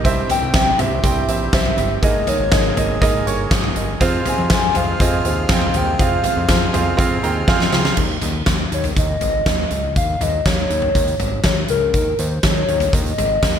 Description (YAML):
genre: piano-driven pop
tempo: 121 BPM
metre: 4/4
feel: straight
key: unclear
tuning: A4 = 440 Hz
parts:
  - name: warm grand piano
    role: accompaniment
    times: 0.0-8.0 s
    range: G2 to Bb5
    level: -21 LUFS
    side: right 5 dB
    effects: none
  - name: accordion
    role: sustained chords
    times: 0.0-7.9 s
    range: C3 to Ab4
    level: -28 LUFS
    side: left 1 dB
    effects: none
  - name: fat analog bass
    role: bass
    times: 0.0-13.6 s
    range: G1 to F2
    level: -23 LUFS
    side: equal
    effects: none
  - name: huge arena drum kit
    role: drums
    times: 0.0-13.5 s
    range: crash cymbal, hi-hat, kick drum, snare drum, toms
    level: -19 LUFS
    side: equal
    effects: gated reverb
  - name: hollow clarinet-like synth lead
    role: melody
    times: 0.3-13.6 s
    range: Bb4 to Ab5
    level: -21 LUFS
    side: left 2 dB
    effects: chorus, phaser
room: light reverb, studio reverb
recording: bright 1980s-style digital production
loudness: -15 LUFS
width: side -8 dB against mid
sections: 0.0-8.0 A section; 8.0-13.6 B section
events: grand piano fill 7.0-8.0; drum fill 7.5-8.0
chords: 0.0 C; 2.0 Absus2; 4.0 Fm; 8.0 Eb7sus4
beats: | 0.04 0.54 1.04 1.53 | 2.03 2.52 3.02 3.52 | 4.01 4.51 5.00 5.50 | 5.99 6.49 6.99 7.48 | 7.98 8.47 8.97 9.46 | 9.96 10.46 10.95 11.45 | 11.94 12.44 12.94 13.43